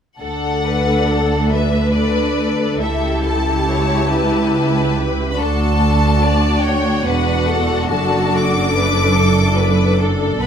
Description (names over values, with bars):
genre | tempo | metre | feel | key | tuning
classical, slow romantic movement for string orchestra | 71 BPM | 3/4 | uneven beats, rubato | D major | A4 = 440 Hz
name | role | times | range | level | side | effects
rich studio violin section | melody | 0.2-10.5 s | D5 to D6 | -22 LUFS | left 5 dB | none
rich studio violin section | second line | 0.2-10.5 s | F#4 to D5 | -22 LUFS | left 1 dB | none
warm studio viola section | accompaniment | 0.2-10.5 s | B3 to B4 | -20 LUFS | left 2 dB | none
rich studio cello section | bass | 0.2-10.5 s | C#2 to B2 | -20 LUFS | right 2 dB | none
rich studio double bass section | bass | 0.2-10.5 s | E1 to D2 | -20 LUFS | right 2 dB | none
room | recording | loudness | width
light reverb | none | -14 LUFS | side -8 dB against mid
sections
0.2-10.5 A section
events
none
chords
0.2 D; 2.8 A7/C#; 5.4 D; 7.9 D/F#